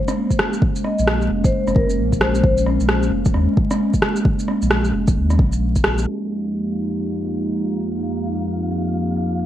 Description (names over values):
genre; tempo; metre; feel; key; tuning
future garage; 132 BPM; 4/4; swing 62% on 16ths; F minor; A4 = 443 Hz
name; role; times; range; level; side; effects
warbly tape-like pad; sustained chords; 0.0-9.5 s; F2 to G4; -22 LUFS; right 1 dB; chorus, built-in reverb, sidechain pumping
electronic rim click and shaker; drums; 0.1-9.5 s; none; -23 LUFS; equal; gated reverb
electronic kick drum; drums; 0.3-5.8 s; none; -19 LUFS; equal; none
vibraphone with medium mallets; melody; 0.8-2.7 s; Bb4 to Eb5; -25 LUFS; left 2 dB; digital delay
soft dub sub bass; bass; 1.0-6.1 s; F1 to Eb2; -20 LUFS; equal; sidechain pumping
wind-like tuned noise texture; texture; 6.7-9.5 s; F4 to F5; -32 LUFS; left 2 dB; built-in reverb, lush chorus
room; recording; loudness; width
moderate plate reverb, RT60 1.7 s, digital ambience; bright 1980s-style digital production, vinyl crackle, low-pass filter; -17 LUFS; side -12 dB against mid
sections
0.0-6.1 A section; 6.1-9.5 B section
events
band accent 5.8; filter sweep 6.1-9.5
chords
0.0 Bbm7; 6.1 Fm11